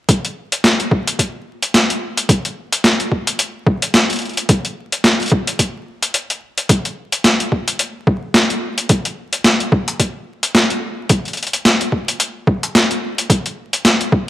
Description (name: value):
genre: glitch hop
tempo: 109 BPM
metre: 4/4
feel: swing 57% on 16ths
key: none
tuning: none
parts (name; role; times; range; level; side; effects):
- boom bap sampler-style drum kit; drums; 0.1-14.1 s; hi-hat, snare drum; -14 LUFS; equal; overdrive
- electronic kick drum; drums; 0.1-14.3 s; none; -16 LUFS; equal; overdrive, high-pass filter on kick, high-pass filter on room
room: moderate lush hall reverb, RT60 1.8 s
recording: vinyl crackle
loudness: -14 LUFS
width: side -14 dB against mid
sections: 0.1-14.3 A section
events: none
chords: none